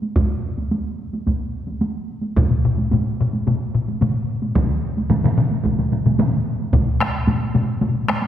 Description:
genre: japanese traditional, taiko drum ensemble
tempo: 110 BPM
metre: 4/4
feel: straight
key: none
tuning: none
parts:
  - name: taiko ensemble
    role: percussion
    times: 0.0-8.3 s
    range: none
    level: -24 LUFS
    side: right 2 dB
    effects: none
  - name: taiko ensemble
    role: percussion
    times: 0.2-6.9 s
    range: none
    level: -22 LUFS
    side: right 1 dB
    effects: none
  - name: taiko ensemble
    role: percussion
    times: 2.4-8.2 s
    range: none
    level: -20 LUFS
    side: left 3 dB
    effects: none
  - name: taiko ensemble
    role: percussion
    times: 4.6-6.3 s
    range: none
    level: -24 LUFS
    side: right 3 dB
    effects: none
room: wet concert hall reverb, RT60 2.0 s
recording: heard from further back in the room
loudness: -18 LUFS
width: side -10 dB against mid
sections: 0.0-6.7 A section; 6.7-8.3 B section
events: none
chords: none

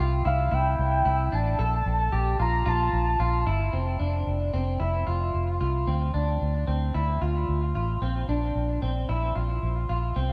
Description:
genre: dream pop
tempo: 112 BPM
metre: 4/4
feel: straight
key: F major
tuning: A4 = 439 Hz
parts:
  - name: electric guitar at the edge of break-up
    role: arpeggios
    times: 0.0-10.3 s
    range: C4 to A4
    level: -32 LUFS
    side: equal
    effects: lush chorus, tape echo
  - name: vintage muted fingered electric bass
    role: bass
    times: 0.0-10.3 s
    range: F1 to D2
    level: -28 LUFS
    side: equal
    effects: none
  - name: warm velvety synth lead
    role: melody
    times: 0.3-3.5 s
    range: F5 to Bb5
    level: -30 LUFS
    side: equal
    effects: chorus, tape echo
room: moderate echo chamber reverb, RT60 1.4 s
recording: echo-heavy mix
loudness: -26 LUFS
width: mono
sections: 0.0-3.7 A section; 3.7-10.3 B section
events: none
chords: 0.0 C; 1.6 Bb5; 3.7 F5; 5.9 Dm9; 8.0 Bb

